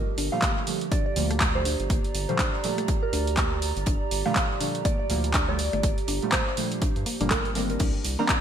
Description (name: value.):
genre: deep house.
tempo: 122 BPM.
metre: 4/4.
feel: swing 58% on 16ths.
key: unclear.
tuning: A4 = 439 Hz.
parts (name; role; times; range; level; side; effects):
mallet-like synth pluck; arpeggios; 0.0-8.4 s; A3 to D4; -35 LUFS; left 3 dB; chorus, vintage 12-bit sampler grit, sidechain pumping, ping-pong delay.
deep mellow chord stab; stabs; 0.0-8.4 s; Bb2 to D4; -31 LUFS; right 2 dB; chorus, sidechain pumping, digital delay.
round analog bass; bass; 0.0-8.2 s; G1 to G2; -30 LUFS; equal; tube saturation, sidechain pumping.
warbly tape-like pad; texture; 0.0-8.4 s; C4 to Bb5; -34 LUFS; right 7 dB; chorus, built-in reverb, sidechain pumping.
open jazz drum kit; drums; 0.2-8.4 s; hi-hat, snare drum; -39 LUFS; right 3 dB; none.
punchy analog drum machine; drums; 0.2-8.4 s; crash cymbal, handclaps, hi-hat, ride cymbal; -29 LUFS; equal; gated reverb.
soft synth bell; melody; 0.3-8.3 s; Bb4 to Bb5; -33 LUFS; right 1 dB; chorus, phaser, vintage 12-bit sampler grit, ping-pong delay.
electronic kick drum; drums; 0.4-8.4 s; none; -27 LUFS; equal; none.
room: light reverb.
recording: bright 1980s-style digital production.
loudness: -23 LUFS.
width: side -9 dB against mid.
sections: 0.0-8.4 A section.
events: none.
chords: 0.0 Gm9; 7.8 Cm9.